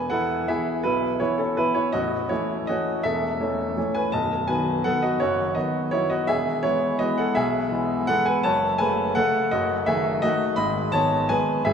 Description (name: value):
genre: classical, piano waltz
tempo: 166 BPM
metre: 3/4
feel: uneven beats, rubato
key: E major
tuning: A4 = 441 Hz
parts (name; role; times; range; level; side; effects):
- clear baby grand piano; solo; 0.0-11.7 s; A0 to B5; -21 LUFS; equal; none
room: wet church reverb, RT60 3.5 s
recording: recorded in a church or concert hall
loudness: -21 LUFS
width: side -7 dB against mid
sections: 0.0-11.7 A section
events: none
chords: 0.0 E; 1.9 A; 4.1 B7; 6.3 E; 8.4 F#m; 9.5 D#dim/F#; 10.6 G#m